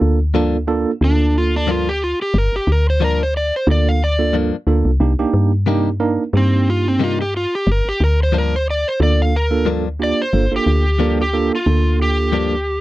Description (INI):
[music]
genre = blues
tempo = 90 BPM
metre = 4/4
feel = swing 55% on 16ths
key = G minor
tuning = A4 = 443 Hz
[part]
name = tine electric piano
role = accompaniment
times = 0.0-12.5 s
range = Bb3 to Bb4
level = -20 LUFS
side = right 5 dB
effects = medium tremolo
[part]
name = woody FM bass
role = bass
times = 0.0-12.8 s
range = G1 to G2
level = -17 LUFS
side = equal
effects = none
[part]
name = direct-recorded clean electric guitar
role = stabs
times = 0.3-12.5 s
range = G2 to Eb4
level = -20 LUFS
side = left 7 dB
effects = none
[part]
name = overdriven slide guitar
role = melody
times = 1.0-12.8 s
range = C4 to F5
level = -20 LUFS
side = equal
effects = none
[sound]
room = little or no reverb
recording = dry, close 1970s-style studio recording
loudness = -15 LUFS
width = side -16 dB against mid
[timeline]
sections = 0.0-12.8 A section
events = electric slide guitar solo 0.0-12.8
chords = 0.0 Gm7; 5.0 Cm7; 7.7 Gm7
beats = 0.34 1.01 1.68 | 2.34 3.01 3.67 4.34 | 5.00 5.67 6.33 7.00 | 7.67 8.33 9.00 9.66 | 10.33 11.00 11.66 12.33